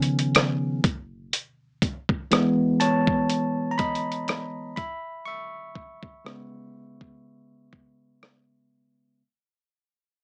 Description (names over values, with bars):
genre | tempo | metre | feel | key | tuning
contemporary R&B | 61 BPM | 4/4 | swing 54% on 16ths | unclear | A4 = 439 Hz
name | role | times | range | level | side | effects
bell-like tine electric piano | accompaniment | 0.0-9.2 s | C#3 to C#6 | -28 LUFS | equal | cassette tape
soft 808-style bass | bass | 0.0-1.3 s | F#1 to C#3 | -30 LUFS | equal | none
dusty soul sampler-style drum kit | drums | 0.0-8.5 s | hi-hat, kick drum, rim click | -25 LUFS | equal | cassette tape
room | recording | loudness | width
light reverb | home recording on cassette, small speaker sound | -25 LUFS | mono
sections
0.0-9.2 A section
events
fade-out 0.0-9.2; tine electric piano solo 0.0-9.2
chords
0.0 C#7; 0.8 F#7sus4 (rootless); 4.8 C#m7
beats
0.35 | 1.33 2.32 3.30 4.28 | 5.27 6.25 7.23 8.22